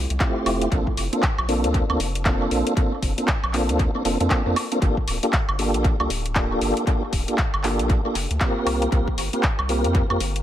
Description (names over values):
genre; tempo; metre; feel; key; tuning
deep house; 117 BPM; 4/4; swing 60% on 16ths; G minor; A4 = 441 Hz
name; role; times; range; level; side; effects
round analog bass; bass; 0.0-10.4 s; D1 to F2; -26 LUFS; equal; sidechain pumping
house drum kit; drums; 0.1-10.4 s; handclaps, hi-hat, woodblock; -27 LUFS; equal; tape echo
mellow tonewheel organ; stabs; 0.2-10.2 s; A3 to Bb4; -24 LUFS; equal; chorus vibrato, fast rotary speaker, sidechain pumping, tape echo
electronic kick drum; drums; 0.2-10.1 s; none; -22 LUFS; equal; none
room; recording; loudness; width
light reverb, digital ambience; echo-heavy mix; -20 LUFS; side -11 dB against mid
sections
0.0-10.4 A section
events
none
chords
0.0 Fmaj9; 0.7 Bbmaj9; 4.8 Gm9; 8.7 C7sus4